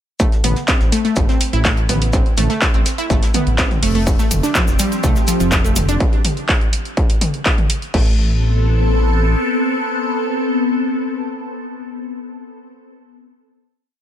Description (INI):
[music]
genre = melodic techno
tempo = 124 BPM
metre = 4/4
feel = straight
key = A minor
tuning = A4 = 440 Hz
[part]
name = wide unison pluck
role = arpeggios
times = 0.2-8.2 s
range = F3 to E4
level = -22 LUFS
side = right 1 dB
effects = cassette tape, sidechain pumping, dub echo
[part]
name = damped 70s drum kit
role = drums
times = 0.2-5.9 s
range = hi-hat, shaker, snare drum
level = -31 LUFS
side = left 2 dB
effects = none
[part]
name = electronic kick drum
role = drums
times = 0.2-8.0 s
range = none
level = -16 LUFS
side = equal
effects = distortion
[part]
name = techno drum kit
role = drums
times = 0.2-8.0 s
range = crash cymbal, handclaps, hi-hat, toms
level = -21 LUFS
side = equal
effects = none
[part]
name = dark detuned saw bass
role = bass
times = 0.4-9.4 s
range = F1 to C2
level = -18 LUFS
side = equal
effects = sidechain pumping
[part]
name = evolving wavetable pad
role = sustained chords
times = 4.5-12.4 s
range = F3 to A4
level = -21 LUFS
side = left 2 dB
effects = ensemble chorus, built-in reverb, phaser, sidechain pumping
[part]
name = cabasa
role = percussion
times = 4.1-6.0 s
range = none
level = -28 LUFS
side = left 2 dB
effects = none
[sound]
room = studio reverb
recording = none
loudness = -14 LUFS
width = side -10 dB against mid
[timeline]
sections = 0.2-7.9 drop; 7.9-11.8 final chord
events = drop 0.2-7.9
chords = 0.2 Amadd9; 4.1 Fsus2; 7.9 Amadd9